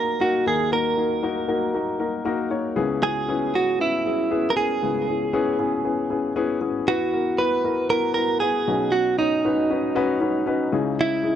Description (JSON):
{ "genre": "piano-driven pop", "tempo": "117 BPM", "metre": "4/4", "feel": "straight", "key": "unclear", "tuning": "A4 = 441 Hz", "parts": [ { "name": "direct-recorded clean electric guitar", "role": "melody", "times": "0.0-11.4 s", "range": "D#4 to B4", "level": "-22 LUFS", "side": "right 4 dB", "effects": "tape echo" }, { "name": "warm upright piano", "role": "accompaniment", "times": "0.0-11.4 s", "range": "B1 to C#5", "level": "-23 LUFS", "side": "left 4 dB", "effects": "none" } ], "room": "moderate booth ambience, RT60 0.3 s", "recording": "dry, close 1970s-style studio recording", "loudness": "-20 LUFS", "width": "side -10 dB against mid", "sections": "0.0-6.9 A section; 6.9-11.4 B section", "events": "none", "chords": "0.0 D#m; 2.8 C#m7; 6.9 Esus2; 8.7 Badd9; 10.7 C#madd9" }